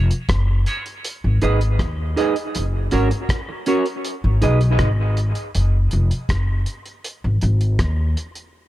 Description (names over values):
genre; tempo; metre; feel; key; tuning
dub reggae; 80 BPM; 4/4; straight; G# dorian; A4 = 440 Hz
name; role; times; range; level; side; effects
semi-hollow electric guitar; accompaniment; 0.0-4.6 s; C#4 to D#5; -23 LUFS; right 3 dB; lush chorus, high-pass filter, dub echo
upright bass; bass; 0.0-8.1 s; E#1 to D#2; -18 LUFS; equal; none
cloth-damped thuddy drum kit; drums; 0.1-8.5 s; hi-hat, kick drum, rim click; -25 LUFS; equal; none
room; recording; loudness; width
little or no reverb; echo-heavy mix; -17 LUFS; side -15 dB against mid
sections
0.0-8.7 A section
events
none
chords
0.0 F#; 1.0 G#m; 2.5 F#; 4.0 G#m; 5.5 N.C.; 7.0 G#5